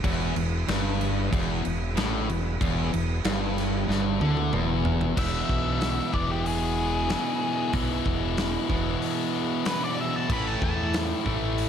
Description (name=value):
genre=classic rock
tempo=94 BPM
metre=4/4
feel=straight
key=E mixolydian, E major from 5.2 s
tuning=A4 = 440 Hz
part: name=tonewheel organ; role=sustained chords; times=0.0-5.2 s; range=B3 to B4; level=-39 LUFS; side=equal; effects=slow rotary speaker, overdrive
part: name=overdriven electric guitar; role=riff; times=0.0-11.7 s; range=E2 to E4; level=-30 LUFS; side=left 11 dB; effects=none
part: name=sludgy distorted guitar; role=riff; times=0.0-11.7 s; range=E2 to A3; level=-30 LUFS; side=right 10 dB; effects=overdrive
part: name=growling fingered electric bass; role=bass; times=0.0-11.7 s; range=E1 to E2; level=-30 LUFS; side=equal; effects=overdrive
part: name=big rock drum kit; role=drums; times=0.0-11.7 s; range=crash cymbal, hi-hat, kick drum, snare drum, toms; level=-30 LUFS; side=equal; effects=none
part: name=octave-fuzz lead guitar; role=melody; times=5.2-10.9 s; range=G4 to B5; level=-31 LUFS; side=left 1 dB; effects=distortion, analog delay
room=light reverb, studio ambience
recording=none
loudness=-24 LUFS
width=side -8 dB against mid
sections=0.0-5.2 A section; 5.2-11.7 B section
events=drum fill 3.9-5.2; lead electric guitar solo 5.2-11.7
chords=0.0 E; 10.3 A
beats=| 0.04 0.68 1.32 1.97 | 2.61 3.25 3.89 4.53 | 5.17 5.81 6.45 7.09 | 7.74 8.38 9.02 9.66 | 10.30 10.94 11.58